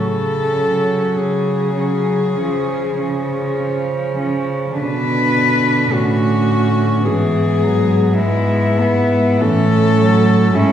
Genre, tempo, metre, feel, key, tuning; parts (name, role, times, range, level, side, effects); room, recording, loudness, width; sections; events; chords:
classical, lyrical piece for cello ensemble; 47-54 BPM; 4/4; rubato; A4 = 440 Hz
warm cello; melody; 0.0-10.7 s; E4 to B4; -19 LUFS; left 4 dB
warm cello; bass; 0.0-10.7 s; G#2 to C#3; -18 LUFS; right 1 dB
warm cello; second line; 0.5-10.7 s; B3 to D4; -22 LUFS; right 3 dB
warm cello; accompaniment; 0.6-10.7 s; D3 to B3; -21 LUFS; equal
wet scoring stage reverb, RT60 1.6 s; heard from further back in the room; -14 LUFS; side -10 dB against mid
0.0-10.7 A section
0.0 C#sus4; 2.4 C#; 4.8 Bm7; 7.1 E/G#; 9.4 A